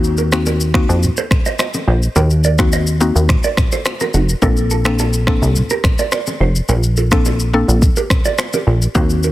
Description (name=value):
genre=afrobeats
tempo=106 BPM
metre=4/4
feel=straight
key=Bb major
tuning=A4 = 440 Hz
part: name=mallet-like synth pluck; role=accompaniment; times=0.0-9.3 s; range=Bb3 to A4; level=-19 LUFS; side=left 3 dB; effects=chorus
part: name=plucky analog bass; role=bass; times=0.0-9.3 s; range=F1 to F2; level=-15 LUFS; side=equal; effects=none
part: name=afro-pop drum kit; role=drums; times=0.0-9.3 s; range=finger snaps, kick drum, rim click, shaker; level=-17 LUFS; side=equal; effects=soft clipping on snare
part: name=mellow electric guitar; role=riff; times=0.2-9.3 s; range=Eb4 to Eb5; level=-22 LUFS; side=right 6 dB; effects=digital delay
part: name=bongos and congas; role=percussion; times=0.3-9.1 s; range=none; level=-25 LUFS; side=equal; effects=none
room=little or no reverb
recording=dense, heavily limited modern master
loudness=-13 LUFS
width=side -15 dB against mid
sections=0.0-9.3 A section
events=none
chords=0.0 Ebm6; 4.4 Bbmaj9